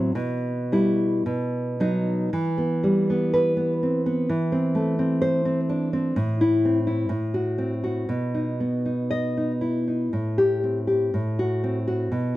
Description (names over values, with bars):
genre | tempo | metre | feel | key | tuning
romantic piece for solo classical guitar | 52-65 BPM | 2/4 | rubato | E minor | A4 = 439 Hz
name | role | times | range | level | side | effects
nylon-string guitar | solo | 0.0-12.4 s | A2 to D#5 | -21 LUFS | equal | none
room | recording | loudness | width
studio reverb | dry, close 1970s-style studio recording | -21 LUFS | side -16 dB against mid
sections
0.0-2.3 A section; 2.3-12.4 B section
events
none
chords
0.2 Em/B; 1.3 B; 2.3 Em; 4.3 Am/E; 6.2 Am; 7.1 F#dim/A; 8.1 B; 10.1 Am7; 11.1 F#dim/A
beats
| 0.15 1.26 | 2.33 3.34 | 4.30 5.23 | 6.17 7.10 | 8.08 9.10 | 10.11 11.12 | 12.11